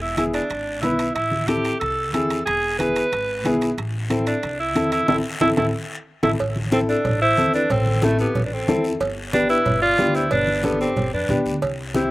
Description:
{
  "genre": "latin, cumbia",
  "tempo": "184 BPM",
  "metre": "4/4",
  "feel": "straight",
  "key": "A harmonic minor, A minor from 6.4 s",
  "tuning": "A4 = 440 Hz",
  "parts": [
    { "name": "breathy alto saxophone", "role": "melody", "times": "0.0-12.1 s", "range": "A3 to B4", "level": "-22 LUFS", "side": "right 2 dB", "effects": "none" },
    { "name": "upright bass", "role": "bass", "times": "0.0-12.1 s", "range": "E1 to F2", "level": "-28 LUFS", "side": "equal", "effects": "none" },
    { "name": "warm upright piano", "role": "accompaniment", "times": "0.2-12.1 s", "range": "B3 to B4", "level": "-23 LUFS", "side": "left 2 dB", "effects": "none" },
    { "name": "congas", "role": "percussion", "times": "0.2-12.1 s", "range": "none", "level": "-28 LUFS", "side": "right 1 dB", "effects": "none" },
    { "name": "guiro", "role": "percussion", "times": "0.2-12.1 s", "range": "none", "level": "-36 LUFS", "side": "left 3 dB", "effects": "slapback echo" },
    { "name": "timbales and cowbell", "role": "percussion", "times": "0.2-11.8 s", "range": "none", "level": "-28 LUFS", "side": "right 4 dB", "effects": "none" },
    { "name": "mellow clarinet", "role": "second line", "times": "6.7-12.1 s", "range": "E4 to D5", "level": "-27 LUFS", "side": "left 3 dB", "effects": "slapback echo" }
  ],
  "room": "little or no reverb",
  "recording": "recorded outdoors, with no room sound",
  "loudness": "-18 LUFS",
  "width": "side -18 dB against mid",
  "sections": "0.0-6.4 A section; 6.4-12.1 B section",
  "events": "band accent 5.1-6.4; drum fill 5.4-6.4",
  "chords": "0.0 E7; 1.2 Am; 2.5 E; 3.8 Am; 9.0 G"
}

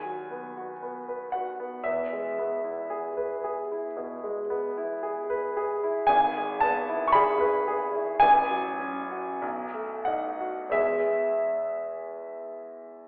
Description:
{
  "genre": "classical, romantic nocturne for solo piano",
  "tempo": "44-59 BPM",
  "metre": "4/4",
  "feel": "rubato",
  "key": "E major",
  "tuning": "A4 = 440 Hz",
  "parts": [
    { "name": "clear grand piano", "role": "solo", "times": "0.0-13.1 s", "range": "G#1 to C#6", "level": "-25 LUFS", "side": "equal", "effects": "none" }
  ],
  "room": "wet recital hall reverb, RT60 1.5 s",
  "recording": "recorded in a church or concert hall, telephone sound",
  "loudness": "-25 LUFS",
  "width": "side -31 dB against mid",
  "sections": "0.0-13.1 A section",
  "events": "none",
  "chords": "0.0 B/D#; 1.9 E; 6.1 E/G#; 8.2 F#m/A; 9.4 B7; 10.8 E"
}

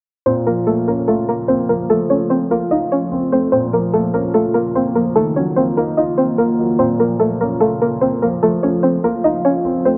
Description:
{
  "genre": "hip hop",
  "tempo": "147 BPM",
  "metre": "4/4",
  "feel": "half-time",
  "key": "Bb harmonic minor",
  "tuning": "A4 = 440 Hz",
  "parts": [
    { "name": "string-like resonator pluck", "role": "melody", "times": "0.3-10.0 s", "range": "A3 to Eb5", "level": "-19 LUFS", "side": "equal", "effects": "chorus" },
    { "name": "dark concert grand piano", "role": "accompaniment", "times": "0.3-10.0 s", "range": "Bb2 to F5", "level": "-22 LUFS", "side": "equal", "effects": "none" },
    { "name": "ethereal airy pad", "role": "sustained chords", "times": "1.3-10.0 s", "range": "Db3 to F4", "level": "-26 LUFS", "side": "equal", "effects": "ensemble chorus, built-in reverb" }
  ],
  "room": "moderate lush hall reverb, RT60 2.5 s",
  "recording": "dry, gritty hardware recording, low-pass filter, nothing above 10.5 kHz",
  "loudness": "-17 LUFS",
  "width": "mono",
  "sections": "0.3-10.0 A section",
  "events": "none",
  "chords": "0.3 Bbm; 1.9 F; 3.5 Bbm; 5.2 Ebmadd9; 6.8 Bbm; 8.4 F"
}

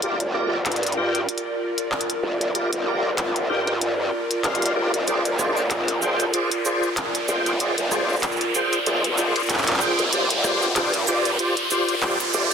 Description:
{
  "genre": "glitch hop",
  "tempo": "95 BPM",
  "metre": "4/4",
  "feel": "swing 56% on 16ths",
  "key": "G phrygian",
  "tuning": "A4 = 439 Hz",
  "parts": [
    { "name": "tonewheel organ", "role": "stabs", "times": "0.0-12.5 s", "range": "F4 to G5", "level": "-25 LUFS", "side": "equal", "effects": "chorus vibrato, slow rotary speaker, digital delay" },
    { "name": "growl bass", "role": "bass", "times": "0.0-12.5 s", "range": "F1 to G2", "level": "-25 LUFS", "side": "equal", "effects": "chorus, high-pass filter" },
    { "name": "glitchy drum kit", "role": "drums", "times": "0.0-12.5 s", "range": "handclaps, hi-hat, rim click, shaker", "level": "-25 LUFS", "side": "equal", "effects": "none" },
    { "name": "riser", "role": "sound effects", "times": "1.3-12.5 s", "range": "none", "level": "-28 LUFS", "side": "equal", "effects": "none" },
    { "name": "airy breathy pad", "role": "texture", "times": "0.0-12.5 s", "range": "F4 to D5", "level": "-28 LUFS", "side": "equal", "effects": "chorus" }
  ],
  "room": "moderate lush hall reverb, RT60 2.3 s",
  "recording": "dense, heavily limited modern master",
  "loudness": "-20 LUFS",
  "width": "side -7 dB against mid",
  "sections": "0.0-12.5 A section",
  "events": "build-up 0.0-12.5; riser 1.3-12.5",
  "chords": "0.0 Gm7; 5.1 Bb7; 10.1 Gm7"
}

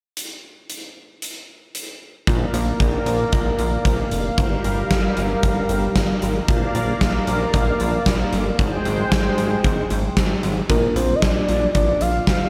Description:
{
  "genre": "synth-pop",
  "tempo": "114 BPM",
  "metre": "4/4",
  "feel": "straight",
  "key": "Bb mixolydian",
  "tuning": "A4 = 440 Hz",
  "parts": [
    { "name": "huge arena drum kit", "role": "drums", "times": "0.2-12.4 s", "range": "hi-hat, kick drum, snare drum", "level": "-23 LUFS", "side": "equal", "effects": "none" },
    { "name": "brassy analog pad", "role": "sustained chords", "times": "2.3-10.7 s", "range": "G3 to G5", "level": "-26 LUFS", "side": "equal", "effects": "chorus" },
    { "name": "chorused synth bass", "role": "bass", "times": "2.3-12.5 s", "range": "F1 to D2", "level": "-26 LUFS", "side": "equal", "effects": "none" },
    { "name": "soft octave-layered synth lead", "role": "melody", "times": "10.7-12.5 s", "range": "Bb4 to F5", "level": "-23 LUFS", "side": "equal", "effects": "chorus, phaser, slapback echo" },
    { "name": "mellow tine electric piano", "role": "accompaniment", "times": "10.7-12.5 s", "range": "Bb3 to F4", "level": "-30 LUFS", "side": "equal", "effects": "slapback echo" }
  ],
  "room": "moderate lush hall reverb, RT60 1.6 s, studio reverb",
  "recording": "big arena sound",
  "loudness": "-20 LUFS",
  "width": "mono",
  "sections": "0.2-2.3 A section; 2.3-10.7 B section; 10.7-12.5 C section",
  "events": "none",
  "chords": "0.2 N.C.; 2.3 Bb; 4.4 Gm7; 6.5 Bb; 8.6 Abmaj7; 10.7 Bb"
}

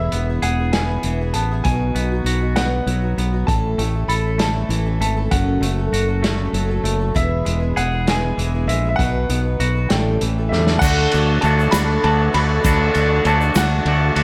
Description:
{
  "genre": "folk rock and heartland rock",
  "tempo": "66 BPM (dotted quarters)",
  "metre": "6/8",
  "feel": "straight",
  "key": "A lydian",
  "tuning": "A4 = 441 Hz",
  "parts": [
    { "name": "clear grand piano", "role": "melody", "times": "0.0-14.2 s", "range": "E5 to B5", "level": "-28 LUFS", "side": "equal", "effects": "plate reverb, analog delay" },
    { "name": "picked twelve-string acoustic guitar", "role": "accompaniment", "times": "0.0-14.2 s", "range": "F#2 to B4", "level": "-28 LUFS", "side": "equal", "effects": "none" },
    { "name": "twangy electric guitar", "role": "riff", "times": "0.0-14.2 s", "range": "E2 to A4", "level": "-26 LUFS", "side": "equal", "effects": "none" },
    { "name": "fingered electric bass", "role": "bass", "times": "0.0-14.2 s", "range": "E1 to E2", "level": "-22 LUFS", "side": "equal", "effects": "none" },
    { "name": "vintage drum kit", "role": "drums", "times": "0.1-14.2 s", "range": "crash cymbal, hi-hat, kick drum, ride cymbal, snare drum", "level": "-25 LUFS", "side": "equal", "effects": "none" },
    { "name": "tonewheel organ", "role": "sustained chords", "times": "10.8-14.2 s", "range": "none", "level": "barely audible", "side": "none", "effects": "none" },
    { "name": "egg shaker", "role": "percussion", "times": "10.8-13.7 s", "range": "none", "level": "-37 LUFS", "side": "equal", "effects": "none" }
  ],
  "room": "light reverb",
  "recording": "none",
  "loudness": "-19 LUFS",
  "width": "mono",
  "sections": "0.0-10.8 A section; 10.8-14.2 B section",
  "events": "drum fill 10.5-10.8",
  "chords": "0.0 E; 1.7 B; 3.5 A; 5.3 F#m; 7.2 E; 9.0 B; 9.9 A7; 10.8 D"
}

